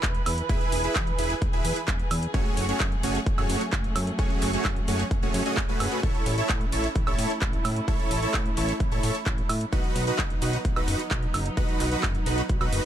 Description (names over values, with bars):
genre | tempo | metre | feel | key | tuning
EDM, festival progressive house | 130 BPM | 4/4 | straight | E major | A4 = 440 Hz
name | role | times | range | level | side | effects
dark chamber string section | sustained chords | 0.0-12.9 s | E3 to B4 | -34 LUFS | right 2 dB | sidechain pumping
fat analog bass | bass | 0.0-12.8 s | E1 to A2 | -30 LUFS | equal | sidechain pumping
big-room dance drum kit | drums | 0.0-12.8 s | handclaps, hi-hat, woodblock | -32 LUFS | right 1 dB | none
electronic kick drum | drums | 0.0-12.6 s | none | -27 LUFS | equal | none
impact | sound effects | 0.0-0.5 s | none | barely audible | none | none
dense compressed supersaw | riff | 0.5-12.9 s | A3 to D#5 | -29 LUFS | right 1 dB | sidechain pumping, dub echo
room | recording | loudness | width
little or no reverb | lossy compression artefacts | -23 LUFS | side -10 dB against mid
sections
0.0-12.9 A section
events
impact 0.0-0.5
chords
0.0 E; 2.3 F#madd9; 6.0 A; 9.7 B